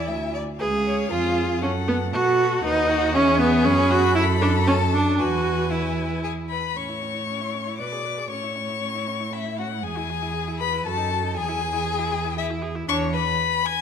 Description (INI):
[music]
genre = quick classical-period movement for string quartet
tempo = 118 BPM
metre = 3/4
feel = straight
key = unclear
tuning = A4 = 439 Hz
[part]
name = rich violin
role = melody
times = 0.0-13.8 s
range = E5 to G#6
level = -28 LUFS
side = left 9 dB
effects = none
[part]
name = clear violin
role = second line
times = 0.0-13.8 s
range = E4 to G#5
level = -30 LUFS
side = left 4 dB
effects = none
[part]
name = clear viola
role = accompaniment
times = 0.0-13.1 s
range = B3 to B4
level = -24 LUFS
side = right 1 dB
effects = none
[part]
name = rich cello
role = bass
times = 0.0-13.3 s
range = C#2 to B2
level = -27 LUFS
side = right 3 dB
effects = none
[sound]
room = wet recital hall reverb, RT60 1.5 s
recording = dark, warm production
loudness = -20 LUFS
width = side -8 dB against mid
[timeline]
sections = 0.0-6.8 A section; 6.8-13.8 B section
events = none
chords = 0.0 E; 0.6 C#; 1.6 F#m; 2.1 B7; 3.1 E; 3.7 F#m; 5.2 E; 6.8 A; 7.8 G#dim/B; 8.3 A; 9.8 E; 10.9 D#dim/F#; 11.4 E; 12.9 E7